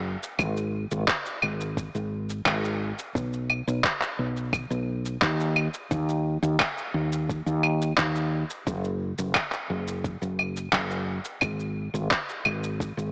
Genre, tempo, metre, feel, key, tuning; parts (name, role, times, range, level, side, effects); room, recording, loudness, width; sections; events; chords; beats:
sunset chillout; 87 BPM; 4/4; straight; A4 = 440 Hz
woody fretless electric bass; bass; 0.0-13.1 s; F#1 to D#2; -27 LUFS; equal
electronic shaker, claves and handclaps; drums; 0.2-13.1 s; -27 LUFS; equal; overdrive
electronic kick drum; drums; 0.4-12.9 s; -32 LUFS; equal
moderate lush hall reverb, RT60 2.6 s; worn, warbling old tape, cassette tape, warbly pitch drift, small speaker sound; -25 LUFS; side -31 dB against mid
0.0-13.1 A section
| 0.39 1.08 1.77 2.46 | 3.15 3.84 4.53 5.22 | 5.91 6.60 7.29 7.98 | 8.67 9.36 10.05 10.74 | 11.43 12.12 12.81